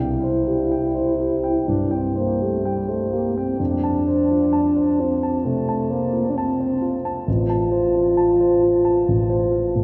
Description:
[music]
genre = classical, romantic duo for French horn and grand piano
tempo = 62-68 BPM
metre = 4/4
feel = rubato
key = F major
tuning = A4 = 439 Hz
[part]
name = mellow French horn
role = melody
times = 0.0-9.8 s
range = G3 to F4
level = -22 LUFS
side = equal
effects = none
[part]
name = warm concert grand piano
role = accompaniment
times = 0.0-9.8 s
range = A1 to A5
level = -25 LUFS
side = equal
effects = none
[sound]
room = wet cathedral reverb, RT60 6.2 s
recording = recorded in a church or concert hall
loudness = -20 LUFS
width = mono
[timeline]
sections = 0.0-9.8 A section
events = none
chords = 0.0 C; 3.6 F; 7.3 F/A

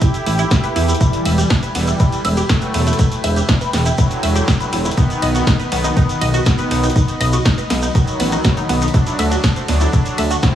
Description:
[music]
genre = melodic techno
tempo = 121 BPM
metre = 4/4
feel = straight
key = E minor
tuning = A4 = 441 Hz
[part]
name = soft supersaw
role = melody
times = 0.0-10.6 s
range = D3 to G4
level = -22 LUFS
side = equal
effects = cassette tape, sidechain pumping, tape echo
[part]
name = evolving wavetable pad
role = sustained chords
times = 0.0-10.6 s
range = E4 to B5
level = -27 LUFS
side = left 2 dB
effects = chorus, built-in reverb, phaser, sidechain pumping
[part]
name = tight sequenced synth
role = arpeggios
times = 0.0-10.5 s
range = B3 to E5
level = -24 LUFS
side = right 1 dB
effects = chorus, phaser, sidechain pumping, dub echo
[part]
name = electronic kick drum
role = drums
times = 0.0-10.5 s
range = none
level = -15 LUFS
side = equal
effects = none
[part]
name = techno drum kit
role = drums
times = 0.0-10.5 s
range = hi-hat, ride cymbal, snare drum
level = -23 LUFS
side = equal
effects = overdrive
[part]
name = shekere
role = percussion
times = 0.0-10.5 s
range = none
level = -30 LUFS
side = right 1 dB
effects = none
[part]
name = fat analog bass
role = bass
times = 0.3-10.4 s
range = E1 to E2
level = -17 LUFS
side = equal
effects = sidechain pumping
[sound]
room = light reverb, digital ambience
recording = heavily compressed radio sound, small room ambience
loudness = -14 LUFS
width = side -11 dB against mid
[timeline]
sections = 0.0-10.6 A section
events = none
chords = 0.0 A5; 1.0 Em; 5.0 B; 8.9 D

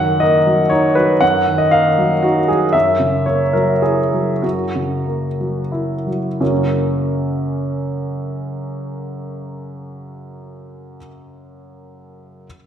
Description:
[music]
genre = neoclassical minimalist piano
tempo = 86-123 BPM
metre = 3/4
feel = rubato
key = F# major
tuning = A4 = 440 Hz
[part]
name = warm upright piano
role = solo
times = 0.0-12.5 s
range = F#2 to F#5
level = -15 LUFS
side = equal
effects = slapback echo
[sound]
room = wet recital hall reverb, RT60 1.6 s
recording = none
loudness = -14 LUFS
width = side -9 dB against mid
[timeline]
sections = 0.0-6.4 A section; 6.4-10.2 B section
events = slowing down 2.0-6.4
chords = 0.0 D#m/F#; 2.7 F#7; 6.4 F#

